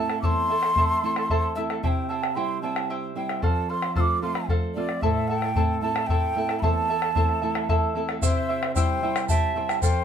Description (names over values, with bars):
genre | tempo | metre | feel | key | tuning
andean folk, Andean ensemble | 75 BPM (dotted quarters) | 6/8 | straight | unclear | A4 = 440 Hz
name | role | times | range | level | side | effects
breathy quena | melody | 0.0-10.0 s | D5 to E6 | -27 LUFS | right 2 dB | none
charango | accompaniment | 0.0-10.0 s | E4 to A5 | -29 LUFS | right 1 dB | none
nylon-string guitar | accompaniment | 0.0-10.0 s | E2 to F4 | -30 LUFS | right 3 dB | none
bombo | percussion | 0.1-9.9 s | none | -26 LUFS | left 2 dB | none
bright large quena | second line | 8.2-10.0 s | C5 to E5 | -30 LUFS | left 6 dB | none
tube shaker | percussion | 8.2-10.0 s | none | -33 LUFS | right 6 dB | none
room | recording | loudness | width
wet studio reverb, RT60 0.6 s | band playing live in one room | -22 LUFS | side -8 dB against mid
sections
0.0-8.2 A section; 8.2-10.0 A section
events
none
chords
0.0 Am; 1.8 C; 3.4 F; 5.0 Am; 8.2 C